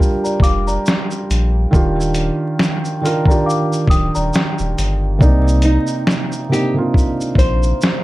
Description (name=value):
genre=lo-fi hip hop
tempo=69 BPM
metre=4/4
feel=swing 57% on 16ths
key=unclear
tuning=A4 = 440 Hz
part: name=felt-muted upright piano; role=accompaniment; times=0.0-8.0 s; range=C3 to D5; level=-19 LUFS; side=right 2 dB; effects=cassette tape, low-pass filter
part: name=lo-fi sampler-style drum kit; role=drums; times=0.0-8.0 s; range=hi-hat, kick drum, shaker, snare drum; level=-16 LUFS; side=equal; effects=none
part: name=small celesta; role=second line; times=0.2-5.2 s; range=D5 to Eb6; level=-23 LUFS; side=left 3 dB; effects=low-pass filter, tape echo
part: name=soft dub sub bass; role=bass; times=0.4-7.7 s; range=D1 to C2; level=-17 LUFS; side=equal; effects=none
part: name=nylon-string guitar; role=melody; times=5.6-8.0 s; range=Eb4 to C5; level=-22 LUFS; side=equal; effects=low-pass filter
room=light reverb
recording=vinyl crackle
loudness=-14 LUFS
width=side -17 dB against mid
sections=0.0-8.0 A section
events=none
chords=0.0 Gm7; 1.7 Ebmaj9; 5.2 Cm9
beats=0.86 | 1.73 2.60 3.47 4.34 | 5.21 6.08 6.95 7.82